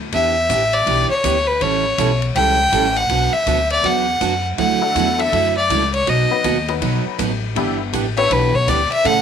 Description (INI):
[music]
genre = country, western swing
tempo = 161 BPM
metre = 4/4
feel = swing 64% on 8ths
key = unclear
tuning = A4 = 439 Hz
[part]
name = upright bass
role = bass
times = 0.0-9.2 s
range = G1 to A2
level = -23 LUFS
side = left 2 dB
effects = none
[part]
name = clear fiddle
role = melody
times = 0.1-9.2 s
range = B4 to G5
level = -17 LUFS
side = left 1 dB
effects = none
[part]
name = picked steel-string acoustic guitar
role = accompaniment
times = 0.1-9.2 s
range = B2 to A4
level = -22 LUFS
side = right 11 dB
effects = none
[part]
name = swinging big-band drum kit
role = drums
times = 0.1-9.2 s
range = hi-hat, kick drum, ride cymbal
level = -28 LUFS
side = left 6 dB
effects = none
[part]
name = honky-tonk upright piano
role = accompaniment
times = 4.8-8.3 s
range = F#3 to B4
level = -25 LUFS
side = left 14 dB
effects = none
[sound]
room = light reverb, small room ambience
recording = 1960s-style stereo with parts hard left and right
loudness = -15 LUFS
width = side -8 dB against mid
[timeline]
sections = 0.0-9.2 A section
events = fiddle solo 0.0-9.2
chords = 0.1 Em7; 1.6 A7; 3.1 Bm; 4.6 Dadd9; 6.1 B; 7.6 Em7